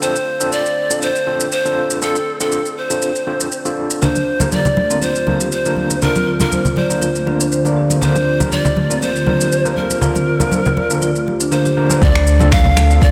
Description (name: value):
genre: afro house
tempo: 120 BPM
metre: 4/4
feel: swing 54% on 16ths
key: unclear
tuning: A4 = 439 Hz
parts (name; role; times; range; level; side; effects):
- pan flute; melody; 0.0-13.1 s; A4 to F5; -22 LUFS; equal; dub echo
- dark analog pad; sustained chords; 0.0-13.1 s; D3 to F5; -26 LUFS; equal; chorus, sidechain pumping
- overdriven tine electric piano; stabs; 0.0-13.1 s; D3 to Bb4; -24 LUFS; equal; fast tremolo, sidechain pumping, low-pass filter, dub echo
- electronic shaker and finger snaps; drums; 0.0-13.1 s; none; -26 LUFS; equal; overdrive
- marimba with soft mallets; arpeggios; 4.0-13.1 s; A3 to D5; -24 LUFS; equal; sidechain pumping, dub echo
- congas; percussion; 4.0-13.1 s; none; -22 LUFS; equal; dub echo
- warm sub bass; bass; 12.0-13.1 s; D2; -15 LUFS; equal; sidechain pumping
- electronic kick drum; drums; 12.0-13.1 s; none; -15 LUFS; equal; overdrive
room: moderate echo chamber reverb, RT60 1.9 s, digital ambience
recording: echo-heavy mix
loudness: -16 LUFS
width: mono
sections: 0.0-12.0 A section; 12.0-13.1 B section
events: filter sweep on analog synth pad 0.0-12.0; drop 12.0-13.1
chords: 0.0 Dm7; 4.0 Bb/D; 12.0 Dm7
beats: | 0.02 0.52 1.02 1.52 | 2.02 2.52 3.02 3.52 | 4.02 4.52 5.02 5.52 | 6.02 6.52 7.02 7.52 | 8.02 8.52 9.02 9.52 | 10.02 10.52 11.02 11.52 | 12.02 12.52 13.02